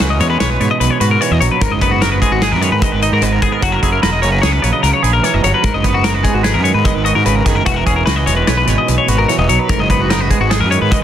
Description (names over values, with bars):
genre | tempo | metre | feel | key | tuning
math rock and midwest emo | 148 BPM | 5/4 | straight | unclear | A4 = 441 Hz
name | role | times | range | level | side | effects
twangy electric guitar | accompaniment | 0.0-11.0 s | G#2 to B4 | -18 LUFS | right 10 dB | harmonic tremolo
twelve-string electric guitar | arpeggios | 0.0-11.0 s | F#4 to D#5 | -16 LUFS | left 7 dB | spring reverb, digital delay
fuzz fingered electric bass | bass | 0.0-11.0 s | E1 to G#2 | -16 LUFS | equal | overdrive
loose indie drum kit | drums | 0.0-11.0 s | hi-hat, kick drum, snare drum | -18 LUFS | equal | none
room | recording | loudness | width
light reverb | dense, heavily limited modern master | -11 LUFS | side -10 dB against mid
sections
0.0-11.0 A section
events
none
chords
0.0 E69; 1.6 G#m9; 3.6 F#7; 5.6 G#m9; 7.7 E69; 9.7 G#m9